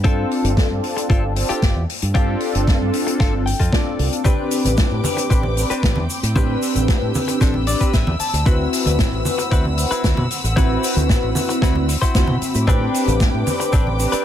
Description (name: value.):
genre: nu-disco, nu disco.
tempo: 114 BPM.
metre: 4/4.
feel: straight.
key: A minor.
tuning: A4 = 439 Hz.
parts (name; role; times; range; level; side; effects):
mellow synth brass; accompaniment; 0.0-14.2 s; C4 to B5; -23 LUFS; left 1 dB; chorus, phaser, ping-pong delay.
direct-recorded clean electric guitar; riff; 0.0-14.2 s; C4 to A5; -26 LUFS; left 4 dB; lush chorus, ping-pong delay.
fingered electric bass with an envelope filter; bass; 0.0-14.2 s; G1 to B2; -21 LUFS; equal; none.
electronic kick drum; drums; 0.0-13.8 s; none; -18 LUFS; equal; overdrive.
unplugged drum kit; drums; 0.0-14.2 s; hi-hat, shaker, snare drum; -25 LUFS; left 2 dB; none.
dark studio string section; sustained chords; 4.2-14.2 s; C4 to E6; -29 LUFS; left 1 dB; sidechain pumping.
congas; percussion; 4.2-14.0 s; none; -27 LUFS; right 2 dB; none.
room: small room ambience.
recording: none.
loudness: -16 LUFS.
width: side -10 dB against mid.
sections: 0.0-14.2 A section.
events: clean electric guitar fill 3.2-4.3, 7.4-8.5.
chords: 0.0 G9sus4; 4.3 Am11; 8.5 D13; 12.7 Am11.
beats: | 0.05 0.57 1.10 1.63 | 2.15 2.68 3.21 3.73 | 4.26 4.78 5.31 5.84 | 6.36 6.89 7.42 7.94 | 8.47 8.99 9.52 10.05 | 10.57 11.10 11.63 12.15 | 12.68 13.21 13.73.